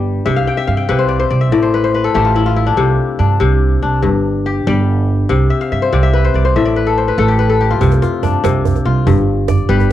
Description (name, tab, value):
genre	west african traditional, West African string and xylophone music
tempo	95 BPM (dotted quarters)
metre	12/8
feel	straight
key	C major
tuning	A4 = 440 Hz
part	kora	arpeggios	0.0-9.9 s	G2 to G5	-15 LUFS	left 5 dB	cassette tape, plate reverb
part	upright bass	bass	0.0-9.9 s	G1 to G2	-15 LUFS	right 2 dB	none
part	djembe	percussion	7.8-9.9 s	none	-17 LUFS	right 7 dB	none
room	moderate studio ambience, RT60 0.5 s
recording	home recording on cassette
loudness	-12 LUFS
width	side -12 dB against mid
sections	0.0-7.8 A section; 7.8-9.9 B section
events	kora fill 0.3-2.8, 5.5-7.8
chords	0.3 C5; 1.5 Am11; 2.8 C5; 4.0 G5; 5.3 C5; 6.6 Am11; 7.8 C5; 9.1 G